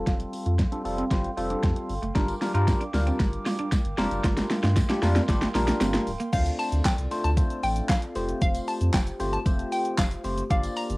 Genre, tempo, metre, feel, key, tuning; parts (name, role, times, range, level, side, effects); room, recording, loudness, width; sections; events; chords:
dance-pop; 115 BPM; 4/4; straight; G minor; A4 = 439 Hz
bell-like tine electric piano; accompaniment; 0.0-11.0 s; G3 to D5; -30 LUFS; left 1 dB; phaser, sidechain pumping, low-pass filter, cassette tape
glass harmonica; sustained chords; 0.0-11.0 s; A3 to D6; -37 LUFS; right 1 dB; sidechain pumping, low-pass filter, cassette tape
warm sub bass; bass; 0.0-11.0 s; C#1 to G2; -27 LUFS; equal; sidechain pumping
clean electric guitar; riff; 0.1-6.3 s; A3 to F4; -33 LUFS; right 3 dB; lush chorus, low-pass filter, cassette tape
pop drum kit; drums; 0.1-11.0 s; crash cymbal, handclaps, hi-hat, kick drum, shaker, snare drum; -25 LUFS; equal; overdrive
tambourine; percussion; 2.3-11.0 s; -47 LUFS; right 3 dB
hollow square pluck; melody; 6.3-11.0 s; F5 to Bb5; -30 LUFS; left 1 dB; chorus, sidechain pumping, cassette tape
moderate studio ambience, RT60 0.5 s; home recording on cassette; -23 LUFS; side -22 dB against mid
0.0-6.3 A section; 6.3-11.0 B section
build-up 0.0-6.3; drum fill 0.0-6.3; filter sweep 0.0-6.3; drop 6.3-11.0
0.0 Fadd9; 2.2 Gm7; 6.3 Dm7; 8.2 Fadd9